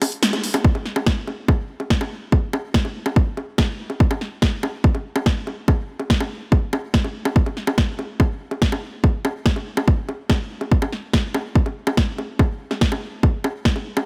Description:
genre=trance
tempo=143 BPM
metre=4/4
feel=straight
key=none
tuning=none
part: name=techno drum kit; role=drums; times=0.0-14.1 s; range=bongos, hi-hat, snare drum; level=-26 LUFS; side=equal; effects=overdrive, small room ambience
part: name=electronic kick drum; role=drums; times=0.6-13.7 s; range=none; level=-20 LUFS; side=equal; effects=small room ambience
room=light reverb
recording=none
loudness=-21 LUFS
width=mono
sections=0.6-14.1 A section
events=break 0.0-0.6; band accent 0.2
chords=none

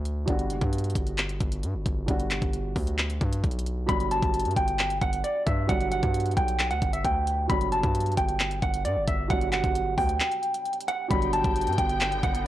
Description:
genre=hip hop, trap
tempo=133 BPM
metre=4/4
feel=half-time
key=G major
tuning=A4 = 439 Hz
part: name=hard-hitting 808-style bass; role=bass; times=0.0-12.4 s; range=F#1 to G2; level=-29 LUFS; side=equal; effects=none
part: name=trap drum kit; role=drums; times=0.1-12.5 s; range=handclaps, hi-hat, kick drum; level=-28 LUFS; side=equal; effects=none
part: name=dark baby grand piano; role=accompaniment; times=0.3-12.5 s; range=B2 to F#4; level=-33 LUFS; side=right 4 dB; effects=low-pass filter
part: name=mellow electric guitar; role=melody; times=3.9-12.4 s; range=D5 to B5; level=-27 LUFS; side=equal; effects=spring reverb, low-pass filter
part: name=warm symphonic string section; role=sustained chords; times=11.1-12.5 s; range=D3 to G5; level=-34 LUFS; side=left 2 dB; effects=none
room=digital ambience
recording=dry, gritty hardware recording, cassette tape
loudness=-24 LUFS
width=side -13 dB against mid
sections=0.0-3.9 A section; 3.9-12.5 B section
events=break 0.0, 10.2-11.1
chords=0.3 Gmaj7

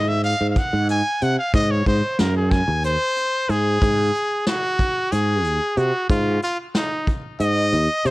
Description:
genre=progressive instrumental, band music in an uneven meter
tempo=184 BPM (eighths)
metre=7/8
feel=straight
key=Ab mixolydian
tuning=A4 = 440 Hz
part: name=brilliant trumpet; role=melody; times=0.0-8.1 s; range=Eb4 to Ab5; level=-21 LUFS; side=equal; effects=plate reverb, ping-pong delay
part: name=sustaining fretless electric bass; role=bass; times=0.0-8.1 s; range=Eb2 to C3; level=-20 LUFS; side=equal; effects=lush chorus
part: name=vintage brush drum kit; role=drums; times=0.2-8.1 s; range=hi-hat, kick drum, snare drum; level=-23 LUFS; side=equal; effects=none
room=light reverb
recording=worn, warbling old tape, cassette tape, warbly pitch drift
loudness=-18 LUFS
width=side -19 dB against mid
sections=0.0-3.8 A section; 3.8-8.1 B section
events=trumpet solo 0.0-3.8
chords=0.0 Ab; 3.8 Ab7(no3)

